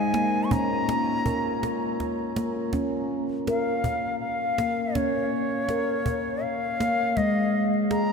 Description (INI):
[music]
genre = world meditative, meditative tuned percussion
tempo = 81 BPM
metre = 3/4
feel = straight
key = Bb minor pentatonic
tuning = A4 = 440 Hz
[part]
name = bright reedy bansuri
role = melody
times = 0.0-8.1 s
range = Db5 to Db6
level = -28 LUFS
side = left 1 dB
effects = ping-pong delay
[part]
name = glass harmonica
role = sustained chords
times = 0.0-2.7 s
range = Ab3 to Db5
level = -32 LUFS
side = left 1 dB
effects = none
[part]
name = handpan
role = arpeggios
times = 0.0-8.1 s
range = Ab3 to Bb4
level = -27 LUFS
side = left 1 dB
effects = ping-pong delay
[part]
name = cajon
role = percussion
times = 0.1-8.1 s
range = none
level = -35 LUFS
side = right 2 dB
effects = none
[sound]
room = wet cathedral reverb, RT60 6.5 s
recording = in a vast, echoing space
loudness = -23 LUFS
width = side -5 dB against mid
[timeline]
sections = 0.0-2.7 A section; 2.7-8.1 B section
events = none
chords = 0.5 Bbm; 7.2 Absus2